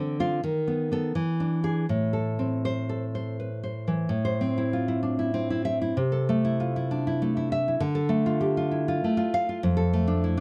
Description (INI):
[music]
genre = romantic piece for solo classical guitar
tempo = 80-101 BPM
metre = 3/4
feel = rubato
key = A minor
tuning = A4 = 440 Hz
[part]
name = nylon-string guitar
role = solo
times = 0.0-10.4 s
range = F2 to F5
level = -26 LUFS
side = equal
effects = none
[sound]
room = studio ambience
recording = dry, close 1970s-style studio recording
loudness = -27 LUFS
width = mono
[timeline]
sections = 0.0-4.1 A section; 4.1-10.4 B section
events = none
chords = 0.4 B7/D#; 1.1 E7; 1.9 Am; 5.9 Am/C; 7.8 Dm; 9.6 Dm/F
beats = 0.42 1.13 | 1.86 2.62 3.35 | 4.07 4.70 5.31 | 5.94 6.57 7.19 | 7.79 8.39 9.01 | 9.62 10.22